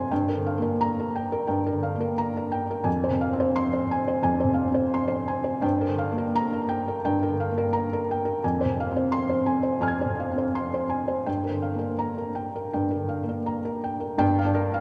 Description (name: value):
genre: neoclassical minimalist piano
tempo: 80-88 BPM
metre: 4/4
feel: rubato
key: unclear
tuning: A4 = 441 Hz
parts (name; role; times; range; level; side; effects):
- felt-muted upright piano; solo; 0.0-14.8 s; G1 to Ab6; -26 LUFS; equal; none
room: wet cathedral reverb, RT60 4.5 s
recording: recorded in a church or concert hall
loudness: -26 LUFS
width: mono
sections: 0.0-14.2 A section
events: none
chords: 0.1 Gm7; 2.9 Fm; 5.6 Gm7; 8.4 Fm; 11.3 Gm7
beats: | 0.11 0.79 1.49 2.18 | 2.87 3.56 4.24 4.93 | 5.63 6.33 7.02 7.72 | 8.43 9.13 9.83 10.54 | 11.27 12.01 12.74 13.48 | 14.22